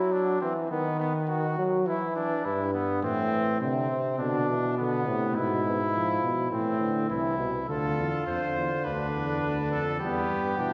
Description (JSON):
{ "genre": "classical, imitative canzona for brass ensemble", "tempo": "103 BPM", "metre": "4/4", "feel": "straight", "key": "A minor", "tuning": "A4 = 440 Hz", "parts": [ { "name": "mellow trumpet", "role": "second line", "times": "0.0-10.7 s", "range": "B3 to F#4", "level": "-33 LUFS", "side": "equal", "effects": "none" }, { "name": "warm trombone", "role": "accompaniment", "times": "0.0-10.7 s", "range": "G2 to G3", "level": "-32 LUFS", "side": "equal", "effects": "none" }, { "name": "mellow bass trombone", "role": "bass", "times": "3.0-10.7 s", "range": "C2 to C3", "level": "-32 LUFS", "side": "equal", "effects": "none" }, { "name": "clear trumpet", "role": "melody", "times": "7.7-10.7 s", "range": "G4 to C5", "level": "-34 LUFS", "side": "equal", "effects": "none" } ], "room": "wet scoring stage reverb, RT60 1.5 s", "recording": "recorded in a church or concert hall, nothing above 7.8 kHz", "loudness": "-28 LUFS", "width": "mono", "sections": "0.0-7.7 A section; 7.7-10.7 B section", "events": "none", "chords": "0.0 Dadd9; 0.7 B/D#; 1.9 Em; 3.0 Am; 4.2 Asus24; 5.4 E/G#; 6.5 Am; 7.7 Dm; 10.0 Em" }